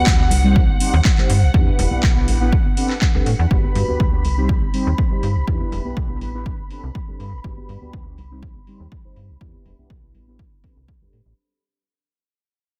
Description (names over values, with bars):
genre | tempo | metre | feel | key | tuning
filtered disco house | 122 BPM | 4/4 | straight | unclear | A4 = 441 Hz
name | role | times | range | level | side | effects
mellow synth brass | accompaniment | 0.0-11.2 s | G3 to C5 | -27 LUFS | equal | chorus, phaser, sidechain pumping, low-pass filter
dark studio string section | sustained chords | 0.0-11.4 s | F#5 to B5 | -31 LUFS | equal | sidechain pumping, low-pass filter
slap-like FM bass | bass | 0.0-11.3 s | E1 to A2 | -22 LUFS | equal | sidechain pumping, low-pass filter
electronic kick drum | drums | 0.1-11.0 s | none | -21 LUFS | equal | overdrive
house drum kit | drums | 0.1-11.2 s | handclaps, hi-hat | -29 LUFS | equal | overdrive, sidechain pumping on hats, low-pass filter on hats, low-pass filter on snare, low-pass filter on room
tambourine and congas | percussion | 0.1-11.4 s | none | -34 LUFS | equal | sidechain pumping on perc, low-pass filter on perc
room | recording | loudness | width
light reverb | none | -18 LUFS | mono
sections
0.0-11.4 A section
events
fade-out 0.0-11.4; filter sweep 0.0-11.4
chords
0.3 Cm; 1.5 Em7; 2.5 Am11; 3.5 Gmaj7; 4.2 Cm; 5.5 Em7; 6.5 Am11; 7.4 Gmaj7; 8.2 Cm; 9.4 Em7; 10.4 Am11